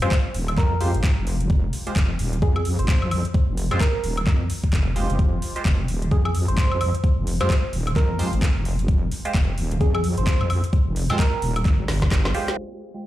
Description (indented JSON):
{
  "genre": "bass house",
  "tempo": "130 BPM",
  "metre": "4/4",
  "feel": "swing 60% on 16ths",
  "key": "F minor",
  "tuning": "A4 = 440 Hz",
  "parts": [
    { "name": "soft struck synth lead", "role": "melody", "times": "0.0-11.7 s", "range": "Ab4 to C5", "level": "-30 LUFS", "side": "right 1 dB", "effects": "chorus, phaser, cassette tape, ping-pong delay" },
    { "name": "band-passed chord stab", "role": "stabs", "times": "0.0-13.0 s", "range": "Ab3 to C5", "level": "-30 LUFS", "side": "right 2 dB", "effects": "phaser, cassette tape, sidechain pumping, ping-pong delay" },
    { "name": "wobble bass", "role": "bass", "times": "0.0-12.3 s", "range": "Eb1 to F2", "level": "-23 LUFS", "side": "equal", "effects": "chorus, overdrive, sidechain pumping" },
    { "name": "garage drum kit", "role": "drums", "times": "0.0-12.6 s", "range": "handclaps, hi-hat, snare drum, woodblock", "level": "-30 LUFS", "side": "equal", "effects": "overdrive, small room ambience" },
    { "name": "electronic kick drum", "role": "drums", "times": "0.1-12.2 s", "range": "none", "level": "-20 LUFS", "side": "equal", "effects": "overdrive, small room ambience" },
    { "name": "downlifter", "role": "sound effects", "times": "12.6-13.1 s", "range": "none", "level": "-46 LUFS", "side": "left 3 dB", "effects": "none" },
    { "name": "deep dark ambient pad", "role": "texture", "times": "12.6-13.1 s", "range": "none", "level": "barely audible", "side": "none", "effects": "none" }
  ],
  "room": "little or no reverb",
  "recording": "played on a big sound system in a bare room, large studio reverb, low-pass filter",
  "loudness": "-19 LUFS",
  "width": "side -14 dB against mid",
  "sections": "0.0-12.6 A section",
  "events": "drum fill 11.9-12.6",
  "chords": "0.0 Fmadd9"
}